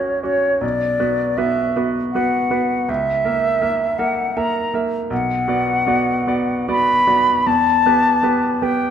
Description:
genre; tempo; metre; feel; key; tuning
classical, romantic duo for flute and grand piano; 79 BPM; 3/4; uneven beats, rubato; B minor; A4 = 440 Hz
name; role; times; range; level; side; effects
concert flute; melody; 0.0-8.9 s; C#5 to B5; -18 LUFS; left 2 dB; none
bright grand piano; accompaniment; 0.0-8.9 s; A#1 to E5; -20 LUFS; right 2 dB; none
room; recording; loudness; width
moderate scoring stage reverb, RT60 1.7 s; close, detailed microphones; -16 LUFS; side -8 dB against mid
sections
0.0-8.9 A section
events
none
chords
0.0 F#/A#; 0.6 Bm; 2.9 A#dim/C#; 5.1 Bm; 7.5 Em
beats
| 0.63 1.38 2.14 | 2.89 3.62 4.36 | 5.11 5.87 6.69 | 7.46 8.24

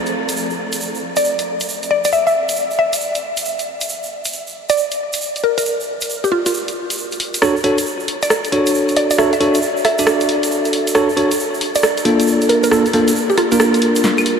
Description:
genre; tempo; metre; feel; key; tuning
UK garage, two-step garage; 136 BPM; 4/4; swing 65% on 16ths; unclear; A4 = 440 Hz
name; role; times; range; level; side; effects
punchy analog drum machine; drums; 0.1-14.4 s; claves, hi-hat, rim click, snare drum; -20 LUFS; equal; none
egg shaker; percussion; 0.1-14.2 s; none; -26 LUFS; right 3 dB; none
mallet-like synth pluck; melody; 1.2-13.6 s; E#4 to E5; -20 LUFS; equal; chorus, phaser, ping-pong delay
bell-like tine electric piano; stabs; 7.4-14.4 s; A#3 to D5; -17 LUFS; right 1 dB; auto-pan, ping-pong delay
room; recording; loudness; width
wet huge ambient reverb, RT60 8.0 s; dreamy mix soaked in reverb, vinyl crackle; -15 LUFS; side -6 dB against mid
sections
0.0-7.0 A section; 7.0-14.4 B section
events
build-up 7.0-14.4; drum fill 14.0-14.4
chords
0.0 N.C.; 7.0 A#maj7b13 (rootless); 12.3 A#maj7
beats
0.36 0.80 1.24 | 1.69 2.13 2.57 3.01 | 3.45 3.89 4.33 4.77 | 5.21 5.66 6.10 6.54 | 6.98 7.42 7.86 8.30 | 8.74 9.19 9.63 10.07 | 10.51 10.95 11.39 11.83 | 12.27 12.71 13.15 13.60 | 14.04

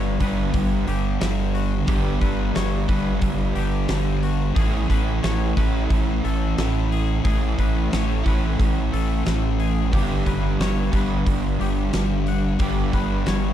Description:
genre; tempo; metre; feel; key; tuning
rock, shoegaze and dream pop; 90 BPM; 4/4; straight; unclear; A4 = 438 Hz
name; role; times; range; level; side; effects
twangy electric guitar; arpeggios; 0.0-13.5 s; F#4 to F#5; -34 LUFS; left 8 dB; wide subtle chorus, tape echo
overdriven semi-hollow guitar; riff; 0.0-13.5 s; G2 to G4; -26 LUFS; right 11 dB; reverse reverb
thick fuzz guitar; riff; 0.0-13.5 s; G2 to A3; -26 LUFS; left 9 dB; distortion, analog chorus
gritty driven synth bass; bass; 0.0-13.5 s; G1 to A1; -24 LUFS; equal; none
huge arena drum kit; drums; 0.2-13.4 s; hi-hat, kick drum, snare drum; -26 LUFS; equal; none
room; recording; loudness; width
small room ambience; dark, warm production; -19 LUFS; side -11 dB against mid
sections
0.0-13.5 A section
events
none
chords
0.0 G; 4.6 Amaj7; 9.9 G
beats
0.54 1.21 | 1.88 2.55 3.22 3.89 | 4.56 5.23 5.90 6.57 | 7.25 7.92 8.59 9.26 | 9.93 10.60 11.27 11.94 | 12.61 13.28

